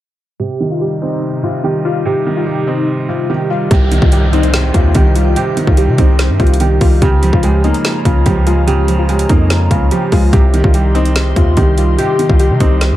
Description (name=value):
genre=hip hop, trap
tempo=145 BPM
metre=4/4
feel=half-time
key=C phrygian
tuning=A4 = 439 Hz
part: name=warbly lo-fi synth keys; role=melody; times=0.4-12.8 s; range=Eb4 to G4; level=-18 LUFS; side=left 2 dB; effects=chorus, low-pass filter, digital delay
part: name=felt-muted upright piano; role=accompaniment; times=0.4-13.0 s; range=C3 to C4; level=-17 LUFS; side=right 2 dB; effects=low-pass filter
part: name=glassy FM pad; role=sustained chords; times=0.9-13.0 s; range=C3 to C6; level=-24 LUFS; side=left 4 dB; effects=ensemble chorus, built-in reverb, low-pass filter
part: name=distorted 808-style bass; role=bass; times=3.7-13.0 s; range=C2 to C3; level=-13 LUFS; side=equal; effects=distortion
part: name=trap drum kit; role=drums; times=3.7-12.9 s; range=hi-hat, kick drum, snare drum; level=-14 LUFS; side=equal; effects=none
part: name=downlifter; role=sound effects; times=3.7-7.0 s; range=none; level=-25 LUFS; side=equal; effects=none
room=digital ambience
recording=dark, warm production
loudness=-10 LUFS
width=side -14 dB against mid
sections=0.4-3.7 A section; 3.7-13.0 B section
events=filter sweep 0.4-3.7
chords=0.4 Cm; 7.0 Db6; 10.3 Cm